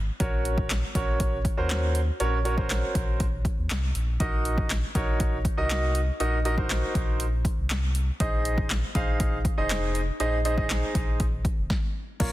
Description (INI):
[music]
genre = dance-pop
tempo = 120 BPM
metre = 4/4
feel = straight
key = unclear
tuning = A4 = 439 Hz
[part]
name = sub bass with octave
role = bass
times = 0.0-12.3 s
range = F1 to Eb2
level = -27 LUFS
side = equal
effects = sidechain pumping
[part]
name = clear concert grand piano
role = accompaniment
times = 0.2-12.3 s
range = Bb3 to F5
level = -29 LUFS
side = right 1 dB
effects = sidechain pumping
[part]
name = punchy analog drum machine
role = drums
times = 0.2-12.3 s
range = crash cymbal, handclaps, hi-hat, kick drum, snare drum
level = -28 LUFS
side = equal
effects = overdrive
[sound]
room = little or no reverb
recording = dense, heavily limited modern master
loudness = -24 LUFS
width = side -16 dB against mid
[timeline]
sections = 0.0-12.2 A section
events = stop 11.7-12.2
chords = 0.2 Gb/Bb; 8.2 Ab